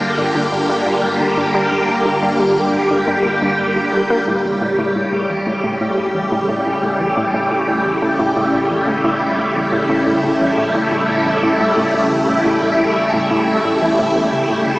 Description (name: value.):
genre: ambient, sequencer-driven space music.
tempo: 88 BPM.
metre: 4/4.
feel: straight.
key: unclear.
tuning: A4 = 440 Hz.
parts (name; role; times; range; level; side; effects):
phased string machine; sustained chords; 0.0-14.8 s; C#3 to G4; -15 LUFS; equal; ensemble chorus, phaser, shimmer reverb.
analog pluck; riff; 0.0-14.7 s; C#2 to Bb3; -22 LUFS; equal; chorus, tape echo.
analog drone; bass; 0.0-14.8 s; G1 to A1; -36 LUFS; equal; none.
room: wet lush hall reverb, RT60 3.2 s.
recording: dreamy mix soaked in reverb, small speaker sound.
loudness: -14 LUFS.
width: side -21 dB against mid.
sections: 0.0-14.8 A section.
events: none.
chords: 0.0 Gm7; 4.3 A7.